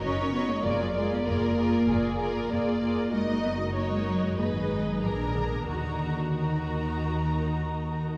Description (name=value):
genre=quick classical-period movement for string orchestra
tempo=88-98 BPM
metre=4/4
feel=rubato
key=Eb minor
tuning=A4 = 440 Hz
part: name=warm studio violin section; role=melody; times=0.0-8.0 s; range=Gb4 to Eb5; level=-37 LUFS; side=equal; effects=none
part: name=warm studio violin section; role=second line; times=0.0-8.1 s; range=Bb4 to Bb5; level=-38 LUFS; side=equal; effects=none
part: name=warm studio viola section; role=accompaniment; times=0.0-8.1 s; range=D4 to Ab4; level=-36 LUFS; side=equal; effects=none
part: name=warm studio cello section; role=bass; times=0.0-7.7 s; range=Cb3 to Db4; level=-32 LUFS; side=equal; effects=none
part: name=warm studio double bass section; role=bass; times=0.0-8.1 s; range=F1 to Eb2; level=-34 LUFS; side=equal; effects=none
room=wet concert hall reverb, RT60 2.4 s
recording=heard from further back in the room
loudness=-28 LUFS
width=mono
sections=0.0-8.2 A section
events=none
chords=0.0 Ebm/Gb; 0.6 Bb7/F; 3.1 Ebm/Gb; 4.4 Abm; 5.0 Bb7; 5.7 Ebm